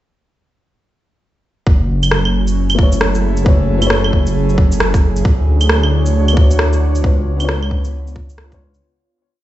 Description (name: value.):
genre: future garage.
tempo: 134 BPM.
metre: 4/4.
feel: swing 62% on 16ths.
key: F# minor.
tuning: A4 = 442 Hz.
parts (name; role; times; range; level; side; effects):
airy breathy pad; sustained chords; 1.9-8.8 s; D3 to C#5; -21 LUFS; right 2 dB; chorus, sidechain pumping.
dark detuned saw bass; bass; 1.7-8.8 s; F#1 to D2; -15 LUFS; equal; sidechain pumping.
electronic kick drum; drums; 1.7-8.6 s; none; -12 LUFS; equal; none.
electronic shaker, claves and rim click; drums; 2.0-8.8 s; none; -19 LUFS; right 1 dB; none.
felt-muted upright piano; accompaniment; 2.7-8.8 s; A3 to C#5; -22 LUFS; left 3 dB; sidechain pumping, ping-pong delay.
room: little or no reverb.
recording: played on a big sound system in a bare room, stone room reverb, nothing above 8.0 kHz.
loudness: -12 LUFS.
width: side -14 dB against mid.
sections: 1.7-8.8 groove.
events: fade-out 6.4-8.8.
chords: 1.7 F#m7; 5.3 Dmaj7; 7.0 C#7b9.